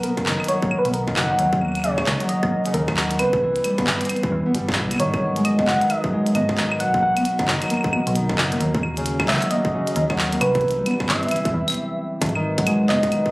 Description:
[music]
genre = IDM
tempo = 133 BPM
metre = 4/4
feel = swing 62% on 16ths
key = unclear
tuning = A4 = 440 Hz
[part]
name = soft struck synth lead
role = melody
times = 0.0-13.3 s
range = A#4 to F#5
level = -23 LUFS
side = equal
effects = chorus, cassette tape, digital delay
[part]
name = Celtic harp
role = arpeggios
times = 0.0-13.3 s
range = C#3 to E4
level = -23 LUFS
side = equal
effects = vintage 12-bit sampler grit, tape echo
[part]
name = glitchy drum kit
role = drums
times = 0.0-13.2 s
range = claves, handclaps, hi-hat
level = -25 LUFS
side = equal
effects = overdrive
[part]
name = electronic kick drum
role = drums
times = 0.2-13.3 s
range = none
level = -26 LUFS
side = equal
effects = distortion
[part]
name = metallic FM bass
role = bass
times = 0.3-13.0 s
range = F#1 to E2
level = -27 LUFS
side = equal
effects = none
[part]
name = warbly tape-like pad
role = sustained chords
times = 5.4-13.3 s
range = C3 to D#5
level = -33 LUFS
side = right 1 dB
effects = chorus, built-in reverb, vintage 12-bit sampler grit
[sound]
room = light reverb, digital ambience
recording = recorded on a phone in the room, club reverb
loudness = -18 LUFS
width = side -21 dB against mid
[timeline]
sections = 0.0-12.2 A section; 12.2-13.3 B section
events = break 11.8-12.2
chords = 0.0 Bmaj7; 1.4 D#m7; 3.2 Cmaj7; 5.0 G#m7; 6.8 Bmaj7; 8.6 D#m7; 10.4 Cmaj7; 12.2 G#m7

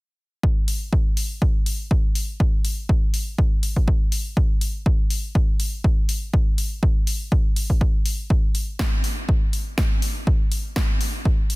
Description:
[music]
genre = house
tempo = 122 BPM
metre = 4/4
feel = swing 55% on 16ths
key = none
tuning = none
[part]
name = electronic kick drum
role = drums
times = 0.4-11.4 s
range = none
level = -20 LUFS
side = equal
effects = none
[part]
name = punchy analog drum machine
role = drums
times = 0.7-11.6 s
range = hi-hat, snare drum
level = -29 LUFS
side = left 1 dB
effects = overdrive
[sound]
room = little or no reverb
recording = dense, heavily limited modern master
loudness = -19 LUFS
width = side -23 dB against mid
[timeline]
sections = 0.4-11.6 A section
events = none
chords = none

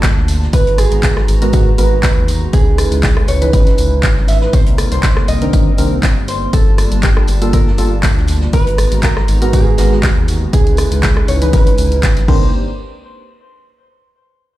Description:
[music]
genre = deep house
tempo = 120 BPM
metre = 4/4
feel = swing 54% on 16ths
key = unclear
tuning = A4 = 440 Hz
[part]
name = hollow-body jazz guitar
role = melody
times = 0.0-12.5 s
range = Gb4 to Fb5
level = -21 LUFS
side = right 3 dB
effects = digital delay
[part]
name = hollow soft pad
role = sustained chords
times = 0.0-12.5 s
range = G3 to Bb5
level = -23 LUFS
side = equal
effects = chorus, sidechain pumping
[part]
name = round analog bass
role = bass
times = 0.0-12.5 s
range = G1 to Ab2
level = -16 LUFS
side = equal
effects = sidechain pumping
[part]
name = electronic kick drum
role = drums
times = 0.0-12.4 s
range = none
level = -14 LUFS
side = equal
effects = none
[part]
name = house drum kit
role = drums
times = 0.0-12.4 s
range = crash cymbal, handclaps, hi-hat, rim click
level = -22 LUFS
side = equal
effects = none
[part]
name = warm soul drum kit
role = drums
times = 0.0-12.3 s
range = hi-hat, snare drum, tambourine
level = -31 LUFS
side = right 1 dB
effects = sidechain pumping on hats, high-pass filter on hats, high-pass filter on snare, sidechain pumping on perc, high-pass filter on perc, high-pass filter on room
[part]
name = downlifter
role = sound effects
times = 0.0-0.5 s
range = none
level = barely audible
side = none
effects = none
[part]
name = percussive organ stab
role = stabs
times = 1.4-12.5 s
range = Eb3 to Cb5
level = -20 LUFS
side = right 1 dB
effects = lush chorus, sidechain pumping, digital delay
[sound]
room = small room ambience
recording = played on a big sound system in a bare room, large studio reverb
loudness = -10 LUFS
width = side -15 dB against mid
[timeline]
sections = 0.0-12.5 A section; 12.5-14.5 B section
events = drop 0.0-12.5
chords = 0.0 Gm9; 0.5 Abm9; 2.5 Dbm9; 4.5 Cm9; 6.5 Gm9; 8.5 Abm9; 10.5 Dbm9; 12.3 Cm9; 12.5 N.C.

